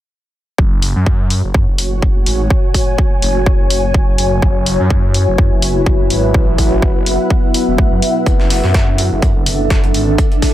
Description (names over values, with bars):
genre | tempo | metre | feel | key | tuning
bass house | 125 BPM | 4/4 | swing 55% on 16ths | F# minor | A4 = 440 Hz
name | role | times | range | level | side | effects
deep dark ambient pad | sustained chords | 1.9-10.5 s | A3 to E5 | -20 LUFS | equal | chorus, built-in reverb, sidechain pumping
phased detuned saw bass | bass | 0.6-10.2 s | E1 to F#2 | -17 LUFS | equal | phaser, overdrive, sidechain pumping
electronic kick drum | drums | 0.6-10.5 s | none | -13 LUFS | equal | overdrive
ethereal airy pad | texture | 1.4-10.5 s | D4 to G#5 | -20 LUFS | left 1 dB | ensemble chorus, built-in reverb, sidechain pumping
electronic hi-hat | drums | 0.8-10.5 s | none | -20 LUFS | left 1 dB | none
breakbeat sampler-style drum kit | drums | 8.3-10.5 s | hi-hat, snare drum | -26 LUFS | equal | overdrive, high-pass filter on hats, high-pass filter on snare, high-pass filter on room
room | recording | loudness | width
light reverb | none | -11 LUFS | side -13 dB against mid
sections
0.6-10.5 A section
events
filter sweep on ambient pad 0.6-10.5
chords
0.6 F#m7; 4.4 Esus2/F#; 8.3 Dsus2/F#